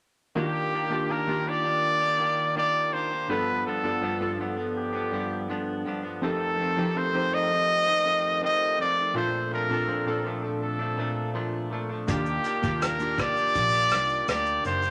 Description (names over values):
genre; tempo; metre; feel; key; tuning
indie pop, bedroom pop; 82 BPM; 4/4; straight; Eb lydian; A4 = 439 Hz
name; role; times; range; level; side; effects
clear trumpet; melody; 0.4-14.9 s; G4 to Eb5; -28 LUFS; equal; none
direct-recorded clean electric guitar; accompaniment; 0.4-14.9 s; F2 to G4; -36 LUFS; equal; warbly pitch drift
warm analog keys; accompaniment; 0.4-14.9 s; G2 to C5; -33 LUFS; equal; chorus
vintage muted fingered electric bass; bass; 12.1-14.9 s; Gb1 to Eb2; -36 LUFS; equal; none
unplugged drum kit; drums; 12.1-14.9 s; hi-hat, kick drum, rim click, shaker; -34 LUFS; equal; none
room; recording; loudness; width
wet studio ambience, RT60 0.5 s; none; -26 LUFS; mono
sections
0.4-14.9 A section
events
none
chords
0.4 Ebmaj7; 3.3 G7; 6.2 F7; 9.2 Bbmaj7; 12.1 Ebmaj7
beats
| 0.36 1.10 1.83 2.56 | 3.29 4.03 4.76 5.49 | 6.22 6.96 7.69 8.42 | 9.15 9.89 10.62 11.35 | 12.08 12.82 13.55 14.28